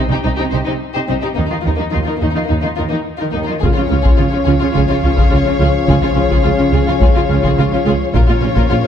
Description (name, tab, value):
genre	cinematic, epic orchestral film score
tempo	106 BPM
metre	4/4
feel	straight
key	unclear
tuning	A4 = 440 Hz
part	rich symphonic violin section	second line	0.0-8.9 s	Bb3 to Bb4	-24 LUFS	left 5 dB	none
part	warm symphonic double bass section	bass	0.0-8.8 s	Bb1 to Eb2	-19 LUFS	right 2 dB	none
part	clear symphonic violin section	melody	0.1-8.9 s	Eb4 to Db5	-22 LUFS	left 7 dB	none
part	rich symphonic viola section	accompaniment	0.1-8.9 s	Eb4 to F4	-23 LUFS	equal	none
part	rich symphonic cello section	bass	0.1-8.8 s	Bb2 to Eb3	-20 LUFS	right 3 dB	none
part	mellow French horn section	sustained chords	3.6-8.9 s	F3 to Db4	-22 LUFS	left 6 dB	none
part	mellow woodwind section	sustained chords	3.6-8.9 s	Db4 to F5	-24 LUFS	left 2 dB	none
part	mellow tuba	bass	3.6-8.8 s	Bb1 to Db2	-21 LUFS	right 4 dB	none
part	taiko ensemble	drums	3.6-8.9 s	none	-17 LUFS	left 1 dB	none
room	moderate scoring stage reverb, RT60 1.6 s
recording	dark, warm production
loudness	-12 LUFS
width	side -9 dB against mid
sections	0.0-3.6 A section; 3.6-8.9 B section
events	none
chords	0.0 Cm; 1.4 Ebsus2; 3.6 Db; 8.1 Bbm